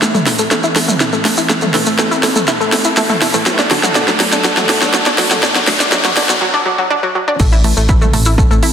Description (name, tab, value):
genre	melodic techno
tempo	122 BPM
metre	4/4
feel	straight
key	A dorian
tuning	A4 = 440 Hz
part	lush unison pad	sustained chords	0.0-8.7 s	E3 to A4	-22 LUFS	equal	chorus, sidechain pumping
part	analog pluck	arpeggios	0.0-8.7 s	F#3 to E4	-16 LUFS	equal	chorus, sidechain pumping, dub echo
part	techno drum kit	drums	0.0-8.7 s	crash cymbal, hi-hat, snare drum, toms	-15 LUFS	equal	sidechain pumping on hats, sidechain pumping on toms, sidechain pumping on cymbals
part	maracas	percussion	0.0-8.6 s	none	-23 LUFS	right 2 dB	none
part	riser	sound effects	0.2-6.4 s	none	-22 LUFS	left 1 dB	none
part	filtered dub chord stab	stabs	1.7-7.7 s	A2 to D4	-24 LUFS	equal	phaser, sidechain pumping, dub echo
part	round analog bass	bass	7.4-8.6 s	A1	-15 LUFS	equal	tube saturation, sidechain pumping
part	electronic kick drum	drums	7.4-8.5 s	none	-12 LUFS	equal	none
room	wet lush hall reverb, RT60 2.0 s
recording	dense, heavily limited modern master, high-pass filter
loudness	-11 LUFS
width	side -8 dB against mid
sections	0.0-7.4 A section; 7.4-8.7 B section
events	build-up 0.0-7.4; drum fill 0.0-6.4; filter sweep on synth arpeggio sound 0.0-7.4; filter sweep on analog synth pad 0.0-7.4; riser 0.2-6.4; break 6.4-7.4; drop 7.4-8.7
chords	0.0 Am; 3.5 D; 7.4 Am